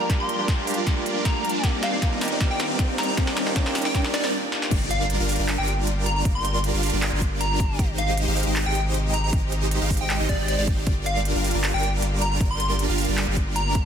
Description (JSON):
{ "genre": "future bass", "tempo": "156 BPM", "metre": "4/4", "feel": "half-time", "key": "G phrygian", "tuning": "A4 = 440 Hz", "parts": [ { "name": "plucky unison lead", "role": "melody", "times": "0.0-13.9 s", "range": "D5 to C6", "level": "-29 LUFS", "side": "left 1 dB", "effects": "sidechain pumping, ping-pong delay" }, { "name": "barky tine electric piano", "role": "accompaniment", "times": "0.0-4.7 s", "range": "Bb3 to D5", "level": "-34 LUFS", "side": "right 3 dB", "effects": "overdrive, sidechain pumping, tape echo" }, { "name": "bright studio string section", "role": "sustained chords", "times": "0.0-13.9 s", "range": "C3 to D5", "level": "-37 LUFS", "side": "left 1 dB", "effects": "sidechain pumping" }, { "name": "supersaw chords", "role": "riff", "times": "0.0-13.9 s", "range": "G3 to G5", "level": "-27 LUFS", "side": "right 1 dB", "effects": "phaser, sidechain pumping, low-pass filter" }, { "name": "riser and impact", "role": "sound effects", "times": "0.0-6.3 s", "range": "none", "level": "-33 LUFS", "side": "left 1 dB", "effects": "none" }, { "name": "big-room dance drum kit", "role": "drums", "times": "0.1-13.8 s", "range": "crash cymbal, handclaps, hi-hat, snare drum", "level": "-30 LUFS", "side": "equal", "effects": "overdrive, high-pass filter on hats, high-pass filter on snare, high-pass filter on cymbals, high-pass filter on room" }, { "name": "electronic kick drum", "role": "drums", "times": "0.1-13.8 s", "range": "none", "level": "-23 LUFS", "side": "equal", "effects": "none" }, { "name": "saturated sub bass", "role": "bass", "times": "4.7-13.9 s", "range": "G1 to Ab1", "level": "-25 LUFS", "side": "equal", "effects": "tube saturation, sidechain pumping" } ], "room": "light reverb", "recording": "dense, heavily limited modern master", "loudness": "-21 LUFS", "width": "side -8 dB against mid", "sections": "0.0-4.7 A section; 4.7-13.9 B section", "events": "build-up 0.0-4.7; drum fill 0.0-4.3, 4.5; riser 0.0-4.3; stop 4.3-4.7; drop 4.7-13.9; impact 4.7-6.3", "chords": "0.0 Gm7; 1.6 Cm9; 4.7 Gm7; 7.8 Abmaj7; 10.9 Gm7" }